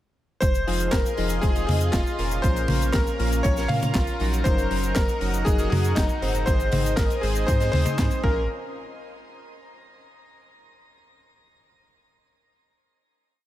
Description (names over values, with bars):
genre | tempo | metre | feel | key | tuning
italo disco | 119 BPM | 4/4 | straight | Bb minor | A4 = 440 Hz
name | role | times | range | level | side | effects
bright electric grand piano | melody | 0.4-8.5 s | Eb4 to F5 | -28 LUFS | left 1 dB | tape echo, shimmer reverb
lush unison pad | sustained chords | 0.6-8.5 s | Db4 to Eb6 | -34 LUFS | equal | chorus, phaser, shimmer reverb
round analog bass | bass | 0.4-8.5 s | F1 to Bb2 | -26 LUFS | equal | none
electronic kick drum | drums | 0.4-8.3 s | none | -24 LUFS | equal | overdrive, small room ambience
tight funk drum kit | drums | 0.4-8.2 s | cabasa, handclaps, hi-hat, snare drum, toms | -29 LUFS | left 1 dB | small room ambience
chorused polysynth | stabs | 0.7-8.4 s | Ab2 to C5 | -30 LUFS | left 2 dB | shimmer reverb
room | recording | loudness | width
light reverb, small room ambience | none | -20 LUFS | side -14 dB against mid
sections
0.4-8.5 chorus; 8.5-10.5 final hit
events
none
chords
0.4 Fm7; 2.4 Bbm; 4.5 Gb6; 6.5 Ab; 8.2 Bbm; 8.5 N.C.